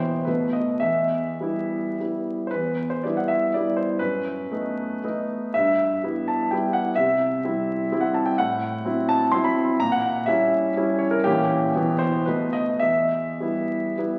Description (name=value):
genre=classical, romantic triple-time dance for piano with dotted rhythms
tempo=96-136 BPM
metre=3/4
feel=rubato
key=E minor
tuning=A4 = 438 Hz
part: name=warm grand piano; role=solo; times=0.0-14.2 s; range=E2 to C6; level=-23 LUFS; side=equal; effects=none
room=wet recital hall reverb, RT60 1.8 s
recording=very old 78 rpm record, vinyl crackle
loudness=-23 LUFS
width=mono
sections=0.0-2.5 A section; 2.5-14.2 A section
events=none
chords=0.3 B7; 0.8 Em; 4.0 B7/F#; 5.5 Em/G; 7.0 C; 8.4 F#m7b5/A; 9.8 A#dim7; 11.7 Em/B; 12.3 B7; 12.8 Em